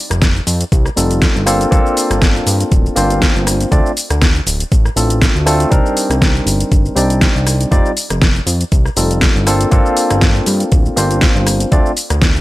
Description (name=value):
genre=nu-disco, nu disco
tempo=120 BPM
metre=4/4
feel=swing 55% on 16ths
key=unclear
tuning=A4 = 441 Hz
part: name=fat analog bass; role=bass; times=0.1-12.4 s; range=D1 to G2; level=-16 LUFS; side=equal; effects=none
part: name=pop drum kit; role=drums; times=0.1-12.4 s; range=hi-hat, rim click, shaker, snare drum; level=-18 LUFS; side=equal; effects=overdrive
part: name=electronic kick drum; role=drums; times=0.2-12.3 s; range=none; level=-13 LUFS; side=equal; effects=overdrive
part: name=barky tine electric piano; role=accompaniment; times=1.0-11.9 s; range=G3 to D5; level=-17 LUFS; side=equal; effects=overdrive, sidechain pumping, digital delay
room=little or no reverb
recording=none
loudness=-11 LUFS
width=side -17 dB against mid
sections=0.0-12.4 A section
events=none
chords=0.0 F7; 1.5 Gm11; 3.7 Dm7; 5.7 Cm7; 7.7 F7; 9.5 Gm11; 11.7 Dm7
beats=0.22 0.72 1.22 | 1.72 2.22 2.72 3.22 | 3.72 4.22 4.72 5.22 | 5.72 6.22 6.72 7.22 | 7.72 8.22 8.72 9.22 | 9.72 10.22 10.72 11.22 | 11.72 12.22